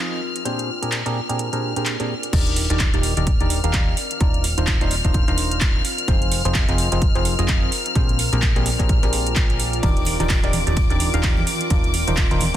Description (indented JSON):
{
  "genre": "piano house",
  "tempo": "128 BPM",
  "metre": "4/4",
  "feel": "swing 58% on 16ths",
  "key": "unclear",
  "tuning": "A4 = 441 Hz",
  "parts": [
    { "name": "rich studio violin section", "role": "sustained chords", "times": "0.0-12.6 s", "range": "D6 to F6", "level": "-28 LUFS", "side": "left 4 dB", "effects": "sidechain pumping" },
    { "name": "percussive organ stab", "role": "riff", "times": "0.0-12.6 s", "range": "Bb2 to F5", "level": "-26 LUFS", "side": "equal", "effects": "chorus, phaser, cassette tape, sidechain pumping, ping-pong delay" },
    { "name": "warbly tape-like pad", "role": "texture", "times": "0.0-12.6 s", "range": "C4 to Eb5", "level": "-32 LUFS", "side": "equal", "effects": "chorus, built-in reverb, sidechain pumping" },
    { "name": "house drum kit", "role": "drums", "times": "0.4-12.6 s", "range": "crash cymbal, handclaps, hi-hat, ride cymbal", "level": "-26 LUFS", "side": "right 2 dB", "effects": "studio ambience" },
    { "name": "plucky analog bass", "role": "bass", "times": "2.3-12.6 s", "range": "Eb1 to Bb1", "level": "-23 LUFS", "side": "equal", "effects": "sidechain pumping" },
    { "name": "electronic kick drum", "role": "drums", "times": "2.3-12.6 s", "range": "none", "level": "-20 LUFS", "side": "equal", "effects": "studio ambience" },
    { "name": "tambourine and congas", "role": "percussion", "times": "9.8-12.6 s", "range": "none", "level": "-29 LUFS", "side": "right 2 dB", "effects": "none" }
  ],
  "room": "little or no reverb",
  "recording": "dense, heavily limited modern master",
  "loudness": "-17 LUFS",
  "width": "side -12 dB against mid",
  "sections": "0.0-2.3 A section; 2.3-12.6 B section",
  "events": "drop 2.3-12.6",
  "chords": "0.2 Bb13; 2.3 Ebmaj7; 4.0 Cm11/Eb; 5.8 Fm7; 7.7 Bb13; 9.8 Ebmaj7; 11.5 Cm11/Eb"
}